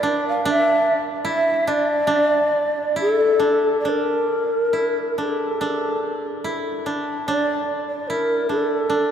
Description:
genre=japanese traditional, Japanese chamber music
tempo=66-75 BPM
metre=2/4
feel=rubato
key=unclear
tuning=A4 = 440 Hz
part: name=breathy mellow long shakuhachi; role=melody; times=0.0-9.1 s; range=A4 to F5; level=-20 LUFS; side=equal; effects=none
part: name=koto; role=second line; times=0.0-9.1 s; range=D4 to E4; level=-24 LUFS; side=right 1 dB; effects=none
room=wet cathedral reverb, RT60 5.3 s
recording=in a vast, echoing space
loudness=-18 LUFS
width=side -8 dB against mid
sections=0.0-3.9 A section; 3.9-9.1 B section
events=none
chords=none

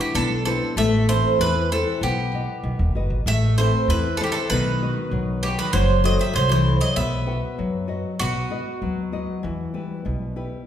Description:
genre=greek folk, Greek bouzouki band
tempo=97 BPM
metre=2/4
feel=straight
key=unclear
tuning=A4 = 440 Hz
part: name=Greek bouzouki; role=melody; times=0.0-10.3 s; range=F#4 to E5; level=-24 LUFS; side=right 4 dB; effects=none
part: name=Greek bouzouki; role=second line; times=0.0-10.3 s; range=C3 to B3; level=-30 LUFS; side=left 4 dB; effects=none
part: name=nylon-string guitar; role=accompaniment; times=0.0-10.6 s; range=B2 to F#5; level=-26 LUFS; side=left 4 dB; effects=none
part: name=upright bass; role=bass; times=0.1-10.5 s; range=D#1 to F#2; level=-23 LUFS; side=equal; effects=none
room=wet recital hall reverb, RT60 1.6 s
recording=recorded in a church or concert hall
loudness=-20 LUFS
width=side -10 dB against mid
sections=0.0-8.2 A section; 8.2-10.7 B section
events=none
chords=0.0 E5; 0.8 Am; 2.0 B; 3.3 Am; 4.5 B; 5.7 F#dim; 7.0 B; 9.4 Em

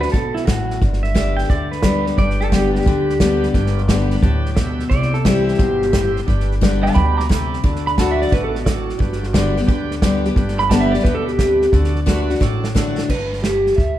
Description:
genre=honky-tonk and classic country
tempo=176 BPM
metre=4/4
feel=swing 66% on 8ths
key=G major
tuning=A4 = 440 Hz
part: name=pedal steel guitar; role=second line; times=0.0-14.0 s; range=E4 to D6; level=-21 LUFS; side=right 1 dB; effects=none
part: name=picked steel-string acoustic guitar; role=accompaniment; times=0.0-13.1 s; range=G2 to G4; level=-20 LUFS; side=left 3 dB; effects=none
part: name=upright bass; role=bass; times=0.0-14.0 s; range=G1 to D2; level=-22 LUFS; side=equal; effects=none
part: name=unplugged drum kit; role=drums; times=0.0-13.9 s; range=crash cymbal, hi-hat, kick drum, snare drum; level=-20 LUFS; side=right 1 dB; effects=none
part: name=bright tonewheel organ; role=accompaniment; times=2.2-13.0 s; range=D4 to B5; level=-29 LUFS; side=right 4 dB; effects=overdrive, slow rotary speaker
room=moderate recital hall reverb, RT60 1.5 s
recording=dark, warm production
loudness=-15 LUFS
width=side -13 dB against mid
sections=0.0-13.1 A section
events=pedal steel guitar solo 0.0-13.1; tonewheel organ fill 3.9-4.9; drum fill 12.4-13.1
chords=0.0 D; 0.8 G; 4.9 C; 6.3 G; 7.6 D; 9.0 G; 11.7 D; 13.1 G

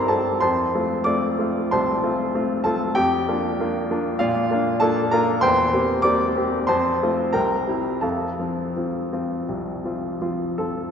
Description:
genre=classical, romantic character piece for solo piano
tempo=95 BPM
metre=4/4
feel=uneven beats, rubato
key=F major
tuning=A4 = 436 Hz
part: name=clear baby grand piano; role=solo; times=0.0-10.9 s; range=C2 to D6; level=-20 LUFS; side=equal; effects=none
room=wet church reverb, RT60 2.8 s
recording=nothing above 7.7 kHz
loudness=-20 LUFS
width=side -7 dB against mid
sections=0.0-10.9 A section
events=none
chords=0.4 F; 3.0 Bb/F; 5.4 C7/E; 6.7 F; 7.3 C7; 8.0 F

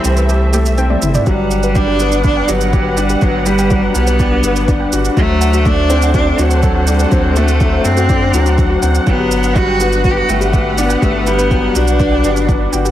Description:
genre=piano and strings electronica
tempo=123 BPM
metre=4/4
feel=straight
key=G major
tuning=A4 = 440 Hz
part: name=rich cello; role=melody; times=0.0-12.7 s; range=F#3 to G4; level=-17 LUFS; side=right 1 dB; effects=none
part: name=dark symphonic string section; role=sustained chords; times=0.0-12.9 s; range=C4 to F#5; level=-22 LUFS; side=equal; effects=none
part: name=warbly dusty pluck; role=arpeggios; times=0.0-12.9 s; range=F#3 to G5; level=-25 LUFS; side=right 1 dB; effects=chorus, sidechain pumping, tape echo
part: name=clear upright piano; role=riff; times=0.0-12.9 s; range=E3 to A4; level=-18 LUFS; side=left 3 dB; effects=none
part: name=warm sub bass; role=bass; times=0.0-12.9 s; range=G1 to F#2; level=-16 LUFS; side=equal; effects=sidechain pumping
part: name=electronic shaker and toms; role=drums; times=0.0-12.9 s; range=none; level=-23 LUFS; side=right 2 dB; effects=overdrive
part: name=electronic kick drum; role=drums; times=1.3-12.6 s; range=none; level=-16 LUFS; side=equal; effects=overdrive
room=light reverb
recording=none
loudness=-11 LUFS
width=side -12 dB against mid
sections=0.0-12.9 A section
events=break 0.0-1.3; drum fill 0.9-1.3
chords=0.0 Am7; 1.3 Gmaj7; 5.2 D7; 9.1 Gmaj7

